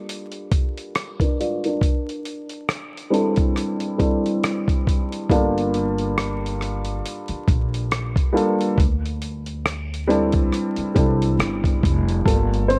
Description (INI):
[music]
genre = lo-fi hip hop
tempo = 69 BPM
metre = 4/4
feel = swing 57% on 16ths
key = G dorian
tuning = A4 = 445 Hz
[part]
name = dark upright piano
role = accompaniment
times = 0.0-12.8 s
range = G3 to D5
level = -25 LUFS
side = equal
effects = cassette tape, low-pass filter
[part]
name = dusty soul sampler-style drum kit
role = drums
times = 0.1-12.8 s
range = hi-hat, kick drum, rim click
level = -24 LUFS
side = equal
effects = none
[part]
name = upright bass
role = bass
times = 5.3-12.8 s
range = F1 to D2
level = -27 LUFS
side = equal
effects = none
[part]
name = deep dark ambient pad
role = sustained chords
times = 12.3-12.8 s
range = none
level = barely audible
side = none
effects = none
[sound]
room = small room ambience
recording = dark, warm production, vinyl crackle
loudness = -22 LUFS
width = mono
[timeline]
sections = 0.0-12.3 A section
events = filter sweep on upright piano 0.0-12.3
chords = 0.0 Gm9; 1.8 D9sus4; 5.3 Gm9; 8.8 D9sus4; 12.3 Gm9